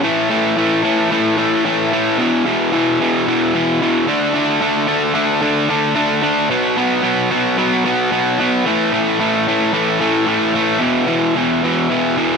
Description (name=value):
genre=rock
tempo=111 BPM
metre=4/4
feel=straight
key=unclear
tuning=A4 = 441 Hz
part: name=overdriven semi-hollow guitar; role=solo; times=0.0-12.4 s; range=E2 to D4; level=-14 LUFS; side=equal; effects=none
room=light reverb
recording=none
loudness=-14 LUFS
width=side -5 dB against mid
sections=0.0-12.4 A section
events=none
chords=0.0 A5; 2.2 E5; 4.1 D5; 6.5 B5; 8.7 A5; 10.8 E5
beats=| 0.03 0.56 1.10 1.64 | 2.18 2.72 3.26 3.80 | 4.34 4.88 5.42 5.96 | 6.50 7.04 7.58 8.12 | 8.66 9.20 9.74 10.28 | 10.82 11.36 11.90